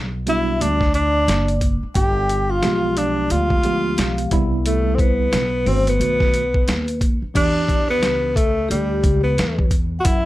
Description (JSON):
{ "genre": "hip hop, jazz-hop", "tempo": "89 BPM", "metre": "4/4", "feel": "swing 62% on 16ths", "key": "B phrygian", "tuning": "A4 = 440 Hz", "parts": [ { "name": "upright bass", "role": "bass", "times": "0.0-10.3 s", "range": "F#1 to F#2", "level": "-22 LUFS", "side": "equal", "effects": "none" }, { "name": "breathy tenor saxophone", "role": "melody", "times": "0.3-10.3 s", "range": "G3 to G4", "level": "-21 LUFS", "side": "equal", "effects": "plate reverb" }, { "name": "vibraphone with medium mallets", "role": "second line", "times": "0.3-10.3 s", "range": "G4 to G5", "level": "-26 LUFS", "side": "left 2 dB", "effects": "plate reverb" }, { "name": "tine electric piano", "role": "accompaniment", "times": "0.3-8.3 s", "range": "C3 to G4", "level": "-24 LUFS", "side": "right 2 dB", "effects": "overdrive, fast stereo tremolo" }, { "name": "boom bap sampler-style drum kit", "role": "drums", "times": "0.3-10.2 s", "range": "crash cymbal, hi-hat, kick drum, snare drum", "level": "-21 LUFS", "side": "equal", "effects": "none" } ], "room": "light reverb", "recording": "none", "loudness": "-16 LUFS", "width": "side -16 dB against mid", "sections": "0.0-7.4 A section; 7.4-10.3 B section", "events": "none", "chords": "0.0 A9sus4 (rootless); 2.0 G7b9; 4.3 Cmaj7; 6.0 B7; 7.4 Em7" }